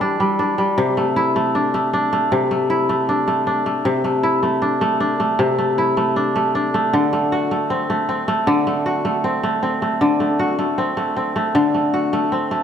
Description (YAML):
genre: folktronica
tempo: 78 BPM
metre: 4/4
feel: straight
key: unclear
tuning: A4 = 440 Hz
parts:
  - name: kora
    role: solo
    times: 0.0-12.6 s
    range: C3 to F#4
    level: -16 LUFS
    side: equal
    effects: tape echo
room: wet recital hall reverb, RT60 1.7 s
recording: none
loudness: -16 LUFS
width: side -8 dB against mid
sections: 0.0-12.6 A section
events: none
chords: 0.0 Em7; 0.8 C69; 6.9 D7